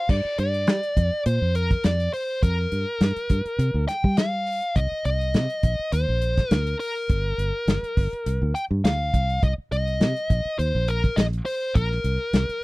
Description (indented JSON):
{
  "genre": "straight-eighth soul blues",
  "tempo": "103 BPM",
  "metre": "4/4",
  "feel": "swing 54% on 16ths",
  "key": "G minor",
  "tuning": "A4 = 440 Hz",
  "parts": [
    { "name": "dark smooth lead guitar", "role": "melody", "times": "0.0-12.6 s", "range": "Bb4 to G5", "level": "-26 LUFS", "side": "equal", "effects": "overdrive" },
    { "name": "fingered electric bass", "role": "bass", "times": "0.1-12.5 s", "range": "G1 to G3", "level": "-24 LUFS", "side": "equal", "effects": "none" },
    { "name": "warm soul drum kit", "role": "drums", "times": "0.1-12.6 s", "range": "crash cymbal, hi-hat, kick drum, snare drum", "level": "-21 LUFS", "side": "equal", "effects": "none" }
  ],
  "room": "little or no reverb",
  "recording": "dry, close 1970s-style studio recording",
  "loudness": "-21 LUFS",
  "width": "side -21 dB against mid",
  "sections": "0.1-12.6 A section",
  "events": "none",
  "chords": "0.1 Gm7; 4.8 Cm7; 7.1 Gm7; 9.4 Cm7",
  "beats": "| 0.09 0.67 1.26 1.84 | 2.42 3.01 3.59 4.18 | 4.76 5.34 5.93 6.51 | 7.09 7.67 8.26 8.84 | 9.42 10.01 10.59 11.17 | 11.75 12.34"
}